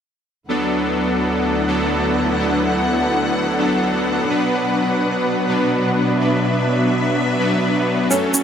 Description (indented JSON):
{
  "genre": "progressive house",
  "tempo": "126 BPM",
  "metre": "4/4",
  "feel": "straight",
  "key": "D major",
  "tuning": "A4 = 443 Hz",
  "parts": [
    { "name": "rich studio string section", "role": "sustained chords", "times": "0.5-8.4 s", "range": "D2 to F#5", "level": "-21 LUFS", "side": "equal", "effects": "none" },
    { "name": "soft supersaw", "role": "stabs", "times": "0.5-8.4 s", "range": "F#3 to B4", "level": "-18 LUFS", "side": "left 1 dB", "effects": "dub echo" },
    { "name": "analog pluck", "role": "arpeggios", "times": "8.1-8.4 s", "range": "C#4", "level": "-20 LUFS", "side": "right 2 dB", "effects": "chorus" },
    { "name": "egg shaker", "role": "percussion", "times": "8.1-8.4 s", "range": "none", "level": "-19 LUFS", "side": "right 1 dB", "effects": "none" }
  ],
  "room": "moderate scoring stage reverb, RT60 1.8 s, studio ambience",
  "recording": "none",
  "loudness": "-16 LUFS",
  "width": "side -8 dB against mid",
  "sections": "0.5-8.4 A section",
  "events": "none",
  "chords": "0.5 D6; 4.3 Bm"
}